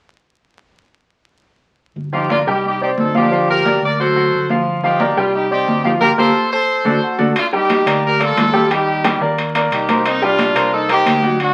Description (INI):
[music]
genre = latin, salsa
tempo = 178 BPM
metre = 4/4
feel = straight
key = G minor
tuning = A4 = 438 Hz
[part]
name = fingered electric bass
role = bass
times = 2.0-11.5 s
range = G1 to Eb2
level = -28 LUFS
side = equal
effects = none
[part]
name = congas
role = percussion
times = 2.0-11.5 s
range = none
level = -24 LUFS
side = equal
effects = none
[part]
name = brilliant horn section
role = melody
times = 2.1-11.5 s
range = C4 to D5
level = -19 LUFS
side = equal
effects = none
[part]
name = bright concert grand piano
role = accompaniment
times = 2.1-11.5 s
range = F3 to G5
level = -20 LUFS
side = equal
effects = none
[part]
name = timbales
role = percussion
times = 7.4-11.5 s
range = none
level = -24 LUFS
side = equal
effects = none
[sound]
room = wet studio reverb, RT60 0.6 s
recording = very old 78 rpm record, vinyl crackle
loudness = -16 LUFS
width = mono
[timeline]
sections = 2.0-7.4 A section; 7.4-11.5 B section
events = band accent 6.0-7.4; drum fill 6.3-7.4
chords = 2.0 Gm7; 2.6 Cmadd9; 3.3 Gm7; 4.0 D7; 4.7 Gm7; 5.3 Cmadd9; 6.0 Gm7; 6.7 D7; 7.4 Gm9; 8.7 Ebmaj7; 10.1 Cm7